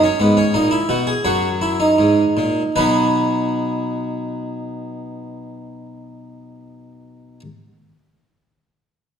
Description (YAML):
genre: classical, baroque-style 3-part fugue for harpsichord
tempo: 75-90 BPM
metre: 4/4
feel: straight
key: B major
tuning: A4 = 440 Hz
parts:
  - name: harpsichord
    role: solo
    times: 0.0-7.4 s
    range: F#2 to D#5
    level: -17 LUFS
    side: right 1 dB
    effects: none
room: wet recital hall reverb, RT60 1.6 s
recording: dark, warm production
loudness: -16 LUFS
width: side -8 dB against mid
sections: 0.0-2.8 A section; 2.8-5.9 B section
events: slowing down 0.0-2.8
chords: 0.0 B; 1.2 F#7; 2.8 B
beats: 0.54 1.25 1.98 | 2.76 3.55 4.34 5.14